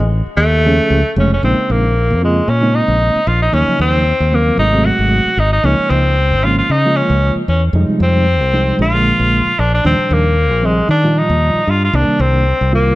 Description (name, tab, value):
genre	electric jazz fusion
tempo	114 BPM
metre	4/4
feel	swing 56% on 16ths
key	Bb dorian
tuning	A4 = 440 Hz
part	bright tenor saxophone	melody	0.0-13.0 s	G#3 to Gb4	-15 LUFS	equal	none
part	fingered electric bass	bass	0.0-12.9 s	F1 to Eb3	-14 LUFS	equal	none
part	reed electric piano	accompaniment	0.7-13.0 s	Bb2 to G#4	-18 LUFS	right 1 dB	tremolo
room	light reverb, studio reverb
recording	none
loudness	-11 LUFS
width	side -18 dB against mid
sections	0.0-1.4 A section; 1.4-13.0 B section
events	none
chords	0.0 F7alt; 1.4 Bbm11; 3.5 Ebm9; 4.6 Ab7b9; 5.6 Db69; 7.7 Fm9; 8.8 Bb7; 9.8 Ebmaj9; 11.9 Cm9